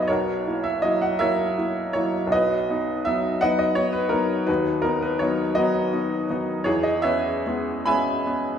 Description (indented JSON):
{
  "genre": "classical, romantic character piece for solo piano",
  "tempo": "55 BPM (dotted quarters)",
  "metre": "6/8",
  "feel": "uneven beats, rubato",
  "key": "B major",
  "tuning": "A4 = 443 Hz",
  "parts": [
    { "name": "clear upright piano", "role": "solo", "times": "0.0-8.6 s", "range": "B1 to B5", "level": "-21 LUFS", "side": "equal", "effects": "none" }
  ],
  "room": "wet recital hall reverb, RT60 1.5 s",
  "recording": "recorded in a church or concert hall",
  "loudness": "-21 LUFS",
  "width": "side -8 dB against mid",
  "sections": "0.0-8.6 A section",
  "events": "none",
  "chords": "0.1 F#7/B; 4.5 B/D#; 6.7 C#m7/E"
}